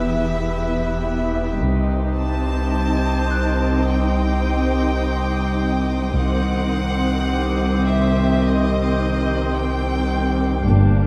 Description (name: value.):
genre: cinematic, suspense film score.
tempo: 53 BPM.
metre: 4/4.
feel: straight.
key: unclear.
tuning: A4 = 440 Hz.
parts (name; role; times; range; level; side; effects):
clear chamber violin section; melody; 0.0-10.7 s; Eb5 to A5; -30 LUFS; equal; none.
warm symphonic viola section; accompaniment; 0.0-11.1 s; Eb3 to E4; -26 LUFS; equal; none.
drifting glass-harmonics texture; sustained chords; 0.0-11.1 s; G4 to E5; -30 LUFS; equal; chorus, built-in reverb.
warm symphonic cello section; bass; 0.0-11.1 s; C2 to G2; -26 LUFS; equal; none.
punchy sub bass; drone; 0.0-11.1 s; E1 to C2; -26 LUFS; equal; none.
rich symphonic double bass section; bass; 1.6-11.1 s; G1 to C2; -25 LUFS; equal; none.
rich studio violin section; texture; 1.7-10.1 s; C6 to Eb6; -40 LUFS; equal; none.
music box; texture; 3.3-11.1 s; C6 to F#6; -36 LUFS; equal; none.
room: wet concert hall reverb, RT60 1.8 s.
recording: none.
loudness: -20 LUFS.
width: mono.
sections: 0.0-11.1 A section.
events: none.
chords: 0.0 Em; 1.6 Cm.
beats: 0.49 | 1.62 2.75 3.88 5.01 | 6.15 7.28 8.41 9.54 | 10.68.